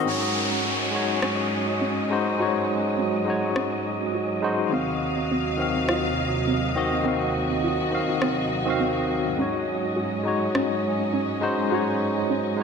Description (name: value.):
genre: sunset chillout.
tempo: 103 BPM.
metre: 4/4.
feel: swing 57% on 16ths.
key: unclear.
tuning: A4 = 440 Hz.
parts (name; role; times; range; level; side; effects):
barky tine electric piano; accompaniment; 0.0-12.6 s; Eb3 to F5; -25 LUFS; moving between left 4 dB and right 4 dB; medium stereo tremolo, auto-pan, tape echo.
warm studio string section; sustained chords; 0.0-12.6 s; Eb2 to F5; -28 LUFS; left 1 dB; none.
wind-like tuned noise texture; texture; 0.0-12.6 s; Eb5 to Eb6; -32 LUFS; right 1 dB; built-in reverb.
soft round pluck; arpeggios; 0.1-12.6 s; C4 to Gb4; -32 LUFS; right 3 dB; none.
downlifter; sound effects; 0.1-4.7 s; none; -30 LUFS; equal; none.
electronic rim click; drums; 1.2-10.7 s; none; -31 LUFS; left 1 dB; none.
room: moderate lush hall reverb, RT60 2.4 s.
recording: none.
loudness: -22 LUFS.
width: side -6 dB against mid.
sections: 0.1-12.6 A section.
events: none.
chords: 0.1 Ab7sus4; 4.7 Ebm69; 9.4 Ab7sus4.